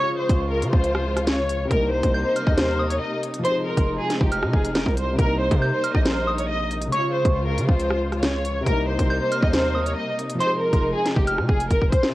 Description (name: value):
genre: hip hop, drill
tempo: 138 BPM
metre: 4/4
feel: half-time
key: C phrygian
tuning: A4 = 440 Hz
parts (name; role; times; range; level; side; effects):
- warm studio violin section; melody; 0.0-12.1 s; G4 to Eb5; -25 LUFS; equal; low-pass filter, cassette tape
- soft synth bell; second line; 0.0-11.7 s; C6 to G6; -29 LUFS; right 1 dB; chorus, phaser, cassette tape, analog delay
- felt-muted upright piano; accompaniment; 0.0-12.1 s; C3 to Ab4; -30 LUFS; left 2 dB; low-pass filter, cassette tape
- dark symphonic string section; sustained chords; 0.0-12.1 s; C3 to F4; -31 LUFS; left 1 dB; cassette tape
- distorted 808-style bass; bass; 0.3-11.9 s; F1 to Db3; -26 LUFS; equal; distortion
- drill drum kit; drums; 0.3-12.1 s; hi-hat, kick drum, rim click, snare drum; -22 LUFS; equal; cassette tape
room: small room ambience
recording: home recording on cassette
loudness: -19 LUFS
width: side -17 dB against mid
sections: 0.0-12.1 A section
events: drum fill 11.7-12.1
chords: 0.0 Db; 1.7 Cm7; 3.4 Fm7; 5.2 Cm7; 6.9 Db; 8.7 Cm7; 10.4 Fm7